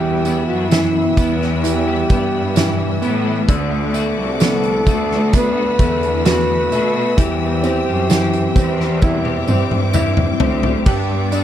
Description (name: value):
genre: pop ballad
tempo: 65 BPM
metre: 4/4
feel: straight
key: unclear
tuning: A4 = 436 Hz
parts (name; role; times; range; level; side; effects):
- breathy flugelhorn; melody; 0.0-9.9 s; E4 to B4; -21 LUFS; equal; none
- bright concert grand piano; accompaniment; 0.0-11.4 s; D3 to G4; -21 LUFS; right 3 dB; none
- warm studio string section; sustained chords; 0.0-11.4 s; B4 to E6; -29 LUFS; equal; none
- twelve-string electric guitar; arpeggios; 0.0-11.4 s; E2 to A4; -25 LUFS; left 13 dB; ensemble chorus
- bright studio cello section; bass; 0.0-11.4 s; C2 to B2; -20 LUFS; left 1 dB; none
- huge arena drum kit; drums; 0.2-11.4 s; crash cymbal, hi-hat, kick drum, snare drum, toms; -18 LUFS; equal; none
- tambourine; percussion; 0.3-11.4 s; none; -35 LUFS; right 12 dB; none
room: small room ambience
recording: dry, close 1970s-style studio recording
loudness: -14 LUFS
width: side -11 dB against mid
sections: 0.0-10.9 A section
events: drum fill 9.0-10.9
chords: 0.0 Em; 3.5 D6; 7.2 C/E; 10.9 Gadd9